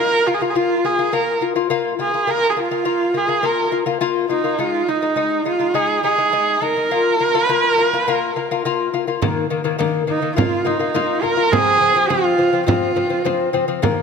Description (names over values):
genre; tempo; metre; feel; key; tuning
mongolian traditional, Mongolian folk; 104 BPM; 4/4; straight; unclear; A4 = 440 Hz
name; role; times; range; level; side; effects
clear horsehead fiddle; melody; 0.0-13.5 s; Eb4 to Bb4; -18 LUFS; right 3 dB; none
lute; arpeggios; 0.0-14.0 s; Eb3 to F4; -20 LUFS; left 7 dB; none
frame drum; percussion; 9.2-14.0 s; none; -23 LUFS; right 4 dB; none
room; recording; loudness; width
moderate scoring stage reverb, RT60 1.7 s; none; -16 LUFS; side -6 dB against mid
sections
0.0-9.2 A section; 9.2-14.0 B section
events
none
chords
0.0 Bb5; 4.6 Ab5; 6.9 Bb5; 9.2 Eb5; 10.4 Bb5; 11.5 F5